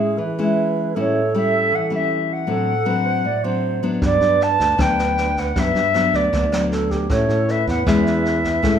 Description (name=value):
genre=bossa nova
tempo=156 BPM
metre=4/4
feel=straight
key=A major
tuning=A4 = 439 Hz
part: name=bright reedy wooden-headed alto flute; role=second line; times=0.0-8.8 s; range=G4 to D5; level=-26 LUFS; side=right 6 dB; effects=none
part: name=nylon-string guitar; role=accompaniment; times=0.0-8.8 s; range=G2 to E4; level=-21 LUFS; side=left 2 dB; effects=none
part: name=silver concert flute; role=melody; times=1.0-8.8 s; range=C#5 to A5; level=-20 LUFS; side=equal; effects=none
part: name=modern bright fingered electric bass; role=bass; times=4.0-8.8 s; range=D2 to A2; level=-23 LUFS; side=equal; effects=none
part: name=jazz brush drum kit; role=drums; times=4.0-8.7 s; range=kick drum, rim click, snare drum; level=-26 LUFS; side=equal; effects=none
room=moderate recital hall reverb, RT60 1.5 s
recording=recorded in a church or concert hall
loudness=-16 LUFS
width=side -8 dB against mid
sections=0.0-8.8 A section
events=none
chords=0.0 Amaj7; 1.0 A7; 2.5 D7/A; 4.0 Gmaj7; 7.1 Amaj7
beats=0.18 0.57 | 0.95 1.33 1.72 2.10 | 2.49 2.87 3.25 3.64 | 4.02 4.41 4.79 5.17 | 5.56 5.94 6.33 6.71 | 7.10 7.48 7.86 8.25 | 8.63